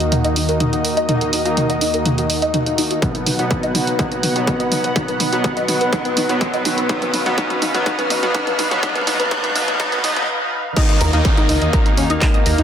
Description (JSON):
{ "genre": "melodic techno", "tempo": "124 BPM", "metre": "4/4", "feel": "straight", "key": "Eb minor", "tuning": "A4 = 440 Hz", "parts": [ { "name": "lush unison pad", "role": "sustained chords", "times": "0.0-12.6 s", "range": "Eb2 to F#5", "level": "-24 LUFS", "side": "equal", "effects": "chorus, vintage 12-bit sampler grit, sidechain pumping" }, { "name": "warbly dusty pluck", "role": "arpeggios", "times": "0.0-12.6 s", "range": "Db4 to Eb5", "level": "-24 LUFS", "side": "equal", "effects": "ensemble chorus, sidechain pumping, tape echo" }, { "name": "sync-sweep polysynth", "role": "stabs", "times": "0.0-12.6 s", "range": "B2 to Eb4", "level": "-21 LUFS", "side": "equal", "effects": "chorus, sidechain pumping, tape echo" }, { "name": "punchy analog drum machine", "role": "drums", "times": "0.0-12.6 s", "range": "crash cymbal, handclaps, hi-hat, toms", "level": "-23 LUFS", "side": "equal", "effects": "none" }, { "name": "riser and downlifter", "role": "sound effects", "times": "2.4-12.6 s", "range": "none", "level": "-27 LUFS", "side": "equal", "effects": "none" }, { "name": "electronic kick drum", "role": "drums", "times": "3.0-12.3 s", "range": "none", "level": "-20 LUFS", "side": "equal", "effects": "distortion" }, { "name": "dark detuned saw bass", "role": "bass", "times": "11.0-12.6 s", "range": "Db2 to Eb2", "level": "-19 LUFS", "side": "equal", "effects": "sidechain pumping" } ], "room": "wet digital room reverb, RT60 1.1 s", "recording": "dense, heavily limited modern master, high-pass filter", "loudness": "-15 LUFS", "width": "side -8 dB against mid", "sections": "0.0-10.8 A section; 10.8-12.6 B section", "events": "build-up 0.0-10.8; drum fill 0.0-10.3; filter sweep on synth arpeggio sound 0.0-10.8; filter sweep on analog polysynth 0.0-10.8; filter sweep 0.0-10.8; riser 2.4-10.3; break 10.3-10.8; drop 10.8-12.6", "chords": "0.0 Ebm; 3.0 B; 10.8 Ebmadd9" }